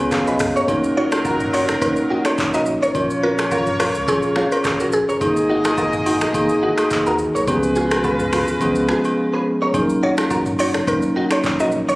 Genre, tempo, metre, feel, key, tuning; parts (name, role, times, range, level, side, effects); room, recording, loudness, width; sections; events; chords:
afrobeats; 106 BPM; 4/4; swing 55% on 16ths; Eb minor; A4 = 443 Hz
clear horn section; second line; 0.0-9.4 s; Gb3 to Eb5; -24 LUFS; equal
mellow tine electric piano; accompaniment; 0.0-12.0 s; F3 to Ab5; -20 LUFS; equal
sub bass with octave; bass; 0.0-12.0 s; Eb1 to Eb2; -31 LUFS; equal
afro-pop drum kit; drums; 0.1-12.0 s; finger snaps, handclaps, hi-hat, kick drum, rim click, shaker, toms; -25 LUFS; equal
direct-recorded clean electric guitar; riff; 0.3-12.0 s; Db4 to Db5; -24 LUFS; right 1 dB; ensemble chorus, tape echo
agogo bells and woodblock; percussion; 0.7-11.4 s; -28 LUFS; equal
mallet-like synth pluck; melody; 1.0-5.1, 10.0-12.0 s; Ab4 to Eb5; -23 LUFS; equal; chorus, tape echo
light reverb; recorded on a phone in the room, club reverb, compression; -16 LUFS; side -20 dB against mid
0.0-9.7 A section; 9.7-12.0 A section
tine electric piano fill 0.0-0.7
0.0 Db7; 0.7 Ebm7; 2.9 Bbm; 5.2 Absus2; 7.5 Db7; 9.7 Ebm7